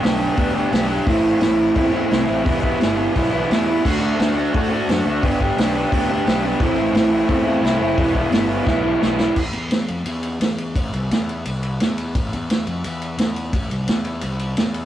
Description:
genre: garage rock duo or trio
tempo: 173 BPM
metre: 4/4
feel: straight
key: A dorian, A minor from 9.4 s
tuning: A4 = 440 Hz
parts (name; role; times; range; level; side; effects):
- raw garage guitar; riff; 0.0-9.4 s; E2 to G4; -18 LUFS; right 1 dB; overdrive
- fuzz picked electric bass; bass; 0.0-14.9 s; E1 to A2; -26 LUFS; left 1 dB; overdrive, tube saturation
- vintage drum kit; drums; 0.0-14.8 s; crash cymbal, hi-hat, kick drum, ride cymbal, snare drum; -22 LUFS; equal; none
room: moderate small room reverb, RT60 0.5 s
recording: rough rehearsal-room recording, warm saturation, cassette tape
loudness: -17 LUFS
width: side -12 dB against mid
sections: 0.0-9.4 A section; 9.4-14.9 B section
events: drum fill 8.7-9.4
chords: 0.0 G; 1.1 Am; 2.5 Em; 3.8 D; 5.2 G; 6.6 Am; 8.0 Em; 9.4 Am (rootless)

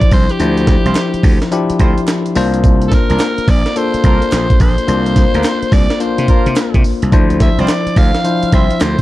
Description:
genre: R&B, new jack swing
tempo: 107 BPM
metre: 4/4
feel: swing 65% on 16ths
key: D minor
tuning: A4 = 440 Hz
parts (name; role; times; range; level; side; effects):
- raspy alto saxophone; melody; 0.0-9.0 s; G4 to F5; -20 LUFS; right 1 dB; none
- bell-like tine electric piano; accompaniment; 0.0-9.0 s; F3 to C5; -17 LUFS; left 4 dB; none
- breakbeat sampler-style drum kit; drums; 0.0-9.0 s; handclaps, hi-hat, kick drum, snare drum, tambourine; -13 LUFS; equal; vintage 12-bit sampler grit
- gritty slap bass; bass; 0.1-8.9 s; Bb1 to C3; -17 LUFS; equal; overdrive
- warm horn section; stabs; 0.9-8.7 s; Bb3 to C5; -25 LUFS; right 1 dB; none
- group handclap; percussion; 1.0-9.0 s; none; -34 LUFS; right 5 dB; none
room: little or no reverb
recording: dark, warm production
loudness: -10 LUFS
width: side -16 dB against mid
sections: 0.0-9.0 A section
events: none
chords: 0.0 Dm9; 2.4 C9sus4; 7.1 Dm9

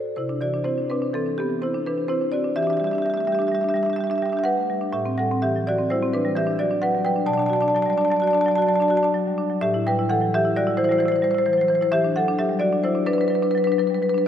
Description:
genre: classical, contemporary piece for solo marimba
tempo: 128 BPM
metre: 5/4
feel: rubato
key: unclear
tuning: A4 = 441 Hz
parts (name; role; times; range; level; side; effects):
- marimba with medium mallets; solo; 0.0-14.3 s; A2 to A5; -19 LUFS; equal; none
room: wet church reverb, RT60 3.0 s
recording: none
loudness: -19 LUFS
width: side -9 dB against mid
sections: 0.2-14.3 A section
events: none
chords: 0.2 Cadd9; 2.6 Em7; 4.9 Am7; 6.3 Em9; 7.3 Bm7; 9.6 Am7; 11.9 Em9

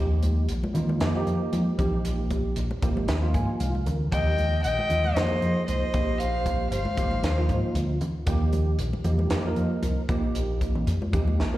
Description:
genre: electric jazz fusion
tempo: 116 BPM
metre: 4/4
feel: swing 55% on 16ths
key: Eb major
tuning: A4 = 440 Hz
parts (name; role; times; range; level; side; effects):
- tine electric piano; accompaniment; 0.0-11.6 s; F3 to Ab5; -30 LUFS; right 2 dB; ensemble chorus, slapback echo
- hollow-body short-scale fingered electric bass; bass; 0.0-11.6 s; G1 to F3; -26 LUFS; equal; none
- crisp fusion drum kit; drums; 0.2-11.5 s; hi-hat, kick drum, snare drum; -30 LUFS; equal; none
- congas; percussion; 0.2-11.4 s; none; -34 LUFS; equal; none
- warm violin; melody; 4.1-7.7 s; Eb5 to G5; -30 LUFS; equal; slapback echo
- breathy jazz flute; second line; 4.1-7.7 s; C5 to Eb5; -30 LUFS; left 2 dB; slapback echo
room: studio reverb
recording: live gig heard through the venue's PA, recital hall reverb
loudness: -23 LUFS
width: side -15 dB against mid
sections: 0.0-11.6 A section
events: tine electric piano fill 3.1-4.1, 11.4; drum fill 11.4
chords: 0.0 Eb; 1.0 Fsus2; 1.8 Bbsus4; 2.8 Ab69; 4.1 Eb; 5.2 Fm9; 5.9 Bbsus24; 7.0 Ab69; 8.3 Eb; 9.3 Fsus2; 10.1 Bbsus4

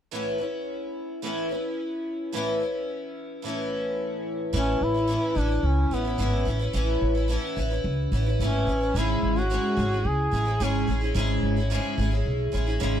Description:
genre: pop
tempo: 109 BPM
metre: 4/4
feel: straight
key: unclear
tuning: A4 = 439 Hz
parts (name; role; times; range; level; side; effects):
- picked twelve-string acoustic guitar; accompaniment; 0.1-13.0 s; G#2 to G#4; -27 LUFS; left 1 dB; double-tracked left and right
- upright bass; bass; 4.5-13.0 s; G#1 to C#2; -25 LUFS; equal; none
- warm duduk; melody; 4.6-11.0 s; B3 to G#4; -28 LUFS; equal; none
room: little or no reverb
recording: dry, close 1970s-style studio recording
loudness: -24 LUFS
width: side -9 dB against mid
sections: 0.1-4.5 A section; 4.5-13.0 B section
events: none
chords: 0.1 Aadd9; 4.5 C#m/G#

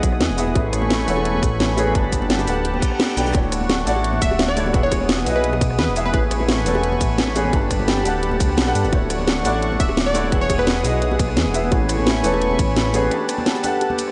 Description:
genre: liquid drum and bass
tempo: 172 BPM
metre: 4/4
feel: straight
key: D major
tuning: A4 = 440 Hz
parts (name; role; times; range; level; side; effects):
- warm grand piano; accompaniment; 0.0-14.1 s; E3 to A5; -26 LUFS; equal; lush chorus, diffuse ambient delay
- warm analog pad; sustained chords; 0.0-14.1 s; A3 to D#6; -28 LUFS; equal; chorus, sidechain pumping
- dark detuned saw bass; bass; 0.0-13.1 s; D1 to G2; -25 LUFS; equal; none
- electronic kick drum; drums; 0.0-12.7 s; none; -23 LUFS; equal; studio reverb
- garage drum kit; drums; 0.0-14.1 s; hi-hat, ride cymbal, rim click, shaker, snare drum; -26 LUFS; equal; studio reverb
- congas and bongos; percussion; 0.2-14.0 s; none; -31 LUFS; equal; none
- reverse cymbal; sound effects; 2.8-3.3 s; none; -36 LUFS; equal; none
- glassy wavetable pluck; melody; 4.2-6.2, 9.8-10.9 s; B4 to E5; -29 LUFS; equal; chorus, diffuse ambient delay
room: moderate lush hall reverb, RT60 2.0 s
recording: dreamy mix soaked in reverb, nothing above 10.3 kHz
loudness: -19 LUFS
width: mono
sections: 0.0-14.1 A section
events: reverse cymbal 2.8-3.3; break 13.1-14.1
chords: 0.0 Emaj9; 0.6 Amaj9; 1.9 Gmaj9; 3.3 Dmaj9; 4.7 Emaj9; 6.1 Amaj9; 7.5 Gmaj9; 8.9 Dmaj9; 10.3 Emaj9; 11.7 Amaj9; 13.1 Gmaj9

